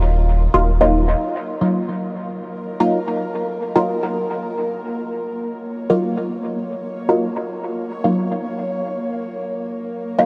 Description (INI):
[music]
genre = dub techno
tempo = 112 BPM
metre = 4/4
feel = swing 56% on 16ths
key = Eb minor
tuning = A4 = 441 Hz
[part]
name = filtered dub chord stab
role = stabs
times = 0.0-10.3 s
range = Gb3 to F4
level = -23 LUFS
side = equal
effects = phaser, dub echo
[part]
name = warm sub bass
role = bass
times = 0.0-1.1 s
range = Eb1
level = -19 LUFS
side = equal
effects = none
[part]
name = bubbling stepped-filter texture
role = texture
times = 2.3-10.3 s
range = Bb3 to Db5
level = -29 LUFS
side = equal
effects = chorus, built-in reverb
[sound]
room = moderate huge ambient reverb, RT60 8.2 s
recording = none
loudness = -21 LUFS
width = mono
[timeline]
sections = 0.0-1.2 A section; 1.2-10.3 B section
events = none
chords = 0.0 Ebmadd9